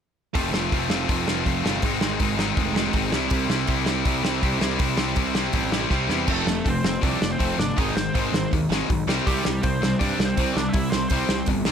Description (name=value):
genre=punk rock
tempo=162 BPM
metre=4/4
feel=straight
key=unclear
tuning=A4 = 440 Hz
part: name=sludgy distorted guitar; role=riff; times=0.3-11.7 s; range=F2 to C4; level=-27 LUFS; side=right 14 dB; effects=overdrive
part: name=tight distorted guitar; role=riff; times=0.3-11.7 s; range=Ab2 to F4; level=-26 LUFS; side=left 14 dB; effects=distortion
part: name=fuzz picked electric bass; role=bass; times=0.4-11.7 s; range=F1 to G2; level=-29 LUFS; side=equal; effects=overdrive
part: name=loose indie drum kit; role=drums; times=0.4-11.7 s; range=crash cymbal, hi-hat, kick drum, snare drum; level=-25 LUFS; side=equal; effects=none
part: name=biting lead guitar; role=melody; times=6.3-11.5 s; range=G3 to E5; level=-28 LUFS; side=equal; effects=overdrive
room=light reverb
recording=none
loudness=-20 LUFS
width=side -8 dB against mid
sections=0.3-6.3 A section; 6.3-11.7 B section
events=drum fill 5.9-6.3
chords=0.3 F; 1.8 Ab; 3.1 C; 6.3 F; 7.8 Ab; 9.1 C5